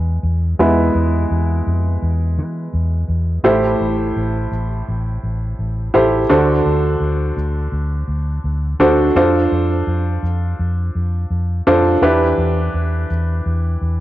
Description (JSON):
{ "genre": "piano-driven pop", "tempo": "84 BPM", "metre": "4/4", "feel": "straight", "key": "A minor", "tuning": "A4 = 440 Hz", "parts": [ { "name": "bright upright piano", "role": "accompaniment", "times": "0.0-14.0 s", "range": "A2 to C5", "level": "-17 LUFS", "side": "right 1 dB", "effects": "none" }, { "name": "vintage muted fingered electric bass", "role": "bass", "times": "0.0-14.0 s", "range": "A1 to E3", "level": "-18 LUFS", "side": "equal", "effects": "none" } ], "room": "light reverb, small room reverb", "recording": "home recording on cassette", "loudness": "-15 LUFS", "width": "side -14 dB against mid", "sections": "0.0-3.4 A section; 3.4-14.0 B section", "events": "upright piano solo 0.0-3.4", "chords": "0.0 E; 3.4 Am7; 6.3 D7; 9.2 F6; 12.0 Em7", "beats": "| 0.59 1.30 2.02 2.73 | 3.45 4.16 4.87 5.59 | 6.30 7.02 7.73 8.45 | 9.16 9.88 10.59 11.31 | 12.02 12.74 13.46" }